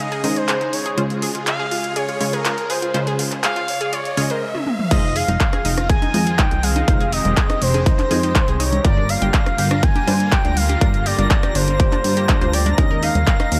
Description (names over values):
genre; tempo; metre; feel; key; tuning
progressive house; 122 BPM; 4/4; straight; F minor; A4 = 440 Hz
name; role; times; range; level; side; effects
expressive synth lead; melody; 0.0-13.6 s; Bb4 to Ab5; -26 LUFS; equal; chorus, dub echo
airy dreamy lead; second line; 0.0-13.6 s; Bb4 to Ab5; -35 LUFS; equal; none
filtered supersaw swell; sustained chords; 0.0-13.6 s; Db3 to Ab4; -31 LUFS; equal; sidechain pumping
unison pluck; stabs; 0.0-13.6 s; G2 to Eb5; -28 LUFS; equal; sidechain pumping, dub echo
riser; sound effects; 0.8-4.9 s; none; -35 LUFS; equal; none
analog pluck; arpeggios; 0.1-13.5 s; D4 to Bb5; -31 LUFS; equal; chorus, sidechain pumping, dub echo
deep house drum kit; drums; 0.1-13.6 s; crash cymbal, handclaps, hi-hat, toms; -27 LUFS; equal; overdrive
plucky analog bass; bass; 4.9-13.6 s; F1 to G2; -23 LUFS; equal; sidechain pumping
electronic kick drum; drums; 4.9-13.4 s; none; -19 LUFS; equal; none
twinkling granular texture; texture; 5.5-13.6 s; Bb5 to Bb6; -37 LUFS; equal; built-in reverb, sidechain pumping
electronic congas and rim click; percussion; 5.3-13.5 s; none; -29 LUFS; equal; overdrive, sidechain pumping on perc, sidechain pumping on snare
room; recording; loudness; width
light reverb; none; -18 LUFS; mono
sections
0.0-4.9 A section; 4.9-13.6 B section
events
build-up 0.0-4.9; drum fill 4.5-4.9; drop 4.9-13.6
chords
0.0 Eb7sus4; 1.0 Dbmaj7; 4.9 Fm7; 8.8 Gm7; 12.8 Eb7sus4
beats
0.48 | 0.98 1.47 1.96 2.45 | 2.94 3.44 3.93 4.42 | 4.91 5.40 5.89 6.39 | 6.88 7.37 7.86 8.35 | 8.85 9.34 9.83 10.32 | 10.81 11.30 11.80 12.29 | 12.78 13.27